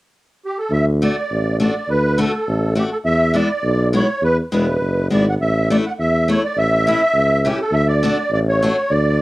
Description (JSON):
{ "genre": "alpine folk, alpine dance band", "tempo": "103 BPM", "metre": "2/4", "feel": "straight", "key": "D major", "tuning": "A4 = 439 Hz", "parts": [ { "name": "musette accordion", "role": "melody", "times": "0.5-9.2 s", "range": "G4 to F#5", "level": "-19 LUFS", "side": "right 1 dB", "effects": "cassette tape" }, { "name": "warm tuba", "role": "bass", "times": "0.7-9.2 s", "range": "E1 to E2", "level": "-18 LUFS", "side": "equal", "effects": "none" }, { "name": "picked steel-string acoustic guitar", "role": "accompaniment", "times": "1.0-8.8 s", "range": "G#3 to F#4", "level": "-20 LUFS", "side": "left 2 dB", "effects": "cassette tape" } ], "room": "moderate studio reverb, RT60 0.6 s", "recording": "home recording on cassette", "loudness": "-15 LUFS", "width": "side -18 dB against mid", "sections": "0.7-9.2 A section", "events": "none", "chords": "0.0 N.C.; 0.7 D; 3.0 E7; 5.4 Asus4; 6.6 A; 7.7 D" }